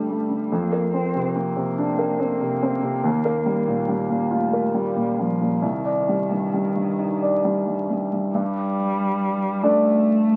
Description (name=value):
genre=neoclassical piano and strings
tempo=44-48 BPM (dotted quarters)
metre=6/8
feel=rubato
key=unclear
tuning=A4 = 441 Hz
part: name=muted cello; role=second line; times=0.0-10.4 s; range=Eb3 to C4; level=-29 LUFS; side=equal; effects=none
part: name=dark concert grand piano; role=accompaniment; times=0.0-10.4 s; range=C2 to D5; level=-23 LUFS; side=equal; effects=none
room=wet studio reverb, RT60 0.5 s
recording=very old 78 rpm record, vinyl crackle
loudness=-22 LUFS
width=mono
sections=0.0-8.3 A section; 8.3-10.4 B section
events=none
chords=0.0 Gsus2; 0.5 Bbadd9/F; 3.0 Ebadd9; 5.6 Cmadd9; 8.3 Gsus2